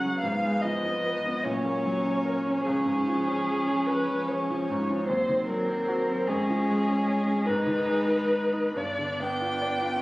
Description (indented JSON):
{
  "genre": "classical, slow romantic movement for piano quartet",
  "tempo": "43-53 BPM (dotted quarters)",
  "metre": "6/8",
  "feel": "rubato",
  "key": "unclear",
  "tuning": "A4 = 439 Hz",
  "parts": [
    { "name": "muted violin", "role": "melody", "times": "0.0-10.0 s", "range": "G#4 to G5", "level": "-28 LUFS", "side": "left 1 dB", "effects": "none" },
    { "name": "muted cello", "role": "second line", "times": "0.0-10.0 s", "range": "E#3 to B3", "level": "-34 LUFS", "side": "equal", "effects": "none" },
    { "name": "bright baby grand piano", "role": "accompaniment", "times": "0.0-10.0 s", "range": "C#2 to D5", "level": "-30 LUFS", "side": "equal", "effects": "none" },
    { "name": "muted viola", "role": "accompaniment", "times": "0.0-10.0 s", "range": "Cb4 to D#4", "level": "-30 LUFS", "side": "equal", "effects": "none" }
  ],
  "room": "light reverb",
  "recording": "recorded on a phone in the room, studio reverb",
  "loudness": "-24 LUFS",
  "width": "side -19 dB against mid",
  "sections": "0.0-10.0 A section",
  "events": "none",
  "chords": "0.2 Fdim/Ab; 1.4 F#/A#; 2.6 C#; 5.1 Cdim/Eb; 6.3 C#/E#; 7.5 G#m; 8.8 G7"
}